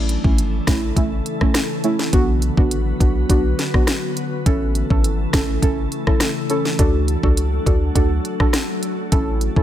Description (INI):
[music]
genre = dancehall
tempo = 103 BPM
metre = 4/4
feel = straight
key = A major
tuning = A4 = 441 Hz
[part]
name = deep mellow chord stab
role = accompaniment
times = 0.0-9.6 s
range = A3 to A4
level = -23 LUFS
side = right 2 dB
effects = chorus
[part]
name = glassy FM pad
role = sustained chords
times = 0.0-9.6 s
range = C#3 to B4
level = -26 LUFS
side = left 2 dB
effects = ensemble chorus, built-in reverb, sidechain pumping
[part]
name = warm 808-style bass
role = bass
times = 0.0-9.6 s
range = G#1 to D2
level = -20 LUFS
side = equal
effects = none
[part]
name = island pop drum kit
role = drums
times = 0.1-9.6 s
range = hi-hat, kick drum, rim click, snare drum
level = -18 LUFS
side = equal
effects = none
[sound]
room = little or no reverb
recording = none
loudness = -16 LUFS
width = side -12 dB against mid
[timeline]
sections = 0.0-9.6 A section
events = none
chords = 0.0 A; 2.1 Bm; 4.5 A; 6.8 D; 9.1 A